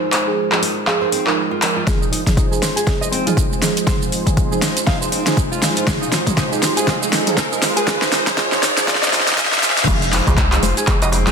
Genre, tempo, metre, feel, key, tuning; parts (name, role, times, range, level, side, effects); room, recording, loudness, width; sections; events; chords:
afro house; 120 BPM; 4/4; swing 58% on 16ths; F minor pentatonic; A4 = 439 Hz
warm analog pad; sustained chords; 0.0-11.3 s; Ab3 to C5; -26 LUFS; right 2 dB; chorus, sidechain pumping
deep mellow chord stab; stabs; 0.0-11.3 s; F3 to Bb4; -23 LUFS; right 5 dB; chorus, sidechain pumping, dub echo
deep house drum kit; drums; 0.1-11.3 s; crash cymbal, handclaps, hi-hat, shaker, snare drum, toms; -18 LUFS; equal; overdrive, small room reverb
nylon-string guitar; arpeggios; 0.6-11.3 s; C4 to F5; -26 LUFS; equal; sidechain pumping, low-pass filter, dub echo
warm sub bass; bass; 1.9-11.3 s; F1 to C2; -20 LUFS; left 1 dB; sidechain pumping, high-pass filter
electronic kick drum; drums; 1.9-11.0 s; -20 LUFS; left 1 dB; overdrive, small room reverb
riser; sound effects; 3.8-9.9 s; -25 LUFS; left 1 dB
congas; percussion; 9.9-11.3 s; -27 LUFS; left 8 dB
darbuka; percussion; 9.9-11.2 s; -26 LUFS; right 2 dB
moderate lush hall reverb, RT60 1.9 s, digital ambience; dense, heavily limited modern master, high-pass filter; -15 LUFS; side -6 dB against mid
0.0-1.9 A section; 1.9-9.9 B section; 9.9-11.3 C section
build-up 1.9-9.9; drum fill 1.9-9.9; filter sweep on nylon-string guitar 1.9-9.9; filter sweep 1.9-9.9; riser 3.8-9.9; drop 9.9-11.3
0.0 Fm7